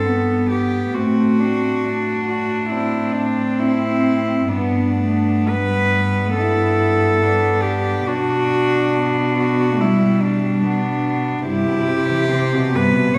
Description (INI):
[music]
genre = classical, lyrical piece for cello ensemble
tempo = 68 BPM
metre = 4/4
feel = uneven beats, rubato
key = G major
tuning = A4 = 441 Hz
[part]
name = clear cello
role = melody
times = 0.0-13.2 s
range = D4 to C#5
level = -23 LUFS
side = equal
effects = none
[part]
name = rich cello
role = second line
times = 0.0-13.2 s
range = G3 to E4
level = -24 LUFS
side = equal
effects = none
[part]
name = warm cello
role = accompaniment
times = 0.0-13.2 s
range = G2 to D4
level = -25 LUFS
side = equal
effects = none
[part]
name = warm cello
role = bass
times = 0.0-13.2 s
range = G2 to C3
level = -25 LUFS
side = equal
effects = none
[sound]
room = wet recital hall reverb, RT60 1.4 s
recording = recorded in a church or concert hall, faint mains hum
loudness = -18 LUFS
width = mono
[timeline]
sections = 0.0-13.2 A section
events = none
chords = 0.0 G; 1.0 D7/A; 4.5 G; 8.1 G/B; 11.5 Cmaj7/G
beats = 0.06 | 0.95 1.83 2.71 3.60 | 4.50 5.48 6.37 7.21 | 8.08 8.97 9.82 10.65 | 11.48 12.32 13.16